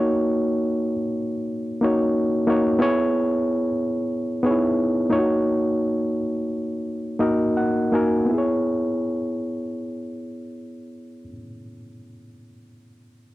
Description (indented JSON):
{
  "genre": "soul",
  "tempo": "79-93 BPM",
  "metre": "4/4",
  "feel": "straight",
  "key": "C# dorian",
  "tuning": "A4 = 441 Hz",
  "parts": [
    { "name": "overdriven reed electric piano", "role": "solo", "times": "0.0-13.3 s", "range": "A#3 to G#5", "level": "-21 LUFS", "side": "equal", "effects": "none" }
  ],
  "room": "light reverb",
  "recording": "dry, close 1970s-style studio recording",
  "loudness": "-20 LUFS",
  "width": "side -16 dB against mid",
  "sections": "0.0-8.3 A section; 8.3-11.3 B section",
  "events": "slowing down 2.8-8.3; reed electric piano fill 6.8-8.3",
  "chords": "0.0 D#m7; 2.8 C#m7; 5.1 D#m7; 8.3 C#m7",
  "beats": "| 0.23 0.87 1.52 2.16 | 2.81 3.45 4.11 4.77 | 5.44 6.13 6.83 7.55 | 8.30 9.06 9.82 10.58"
}